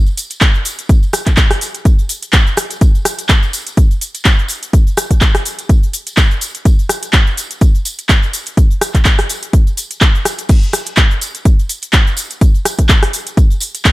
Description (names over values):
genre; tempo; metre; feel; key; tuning
house; 125 BPM; 4/4; swing 55% on 16ths; none; none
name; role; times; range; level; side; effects
house drum kit; drums; 0.1-13.9 s; crash cymbal, handclaps, hi-hat, rim click, shaker; -16 LUFS; equal; none
tambourine; percussion; 0.1-13.9 s; none; -28 LUFS; right 1 dB; none
electronic kick drum; drums; 0.4-13.9 s; none; -10 LUFS; equal; none
room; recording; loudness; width
digital ambience; none; -11 LUFS; side -19 dB against mid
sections
0.0-13.9 A section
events
none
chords
none